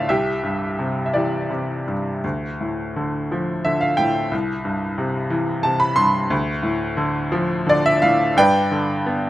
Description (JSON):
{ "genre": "classical, lyrical solo piano", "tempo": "54-61 BPM (dotted quarters)", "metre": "6/8", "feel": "rubato", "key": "C major", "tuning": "A4 = 440 Hz", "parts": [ { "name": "bright upright piano", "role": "solo", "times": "0.0-9.3 s", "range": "C2 to C6", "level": "-18 LUFS", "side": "equal", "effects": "none" } ], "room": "light reverb", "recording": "close, detailed microphones", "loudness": "-18 LUFS", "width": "side -15 dB against mid", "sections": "0.0-9.3 A section", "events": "none", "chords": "0.1 Cadd9; 2.2 Dm; 4.3 C; 6.3 Dm; 8.4 G", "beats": "| 0.08 1.15 | 2.24 3.32 | 4.33 5.32 | 6.31 7.33 | 8.37" }